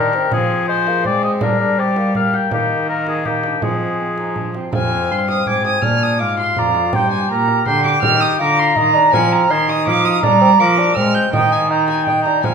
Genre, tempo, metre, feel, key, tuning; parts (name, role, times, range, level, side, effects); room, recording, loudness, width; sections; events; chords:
classical, renaissance-style consort dance; 164 BPM; 3/4; straight; F dorian; A4 = 440 Hz
warm oboe; melody; 0.0-12.5 s; G4 to Bb5; -20 LUFS; left 6 dB
dark violin; second line; 0.0-12.5 s; C4 to G6; -18 LUFS; right 5 dB
mellow bassoon; accompaniment; 0.0-12.5 s; Ab3 to G4; -21 LUFS; left 2 dB
rich cello; bass; 0.0-12.5 s; F2 to Ab3; -21 LUFS; right 1 dB
frame drum; percussion; 0.1-12.5 s; -24 LUFS; right 3 dB
wet recital hall reverb, RT60 1.4 s; minimal, uncompressed stereo recording; -13 LUFS; side -6 dB against mid
0.0-4.7 A section; 4.7-12.5 A section
0.3 Fm; 1.4 Gm; 2.5 Eb; 3.6 Fm; 5.8 Bb; 6.9 Gm; 8.0 Eb; 9.1 Fm; 10.2 Gm; 11.3 Eb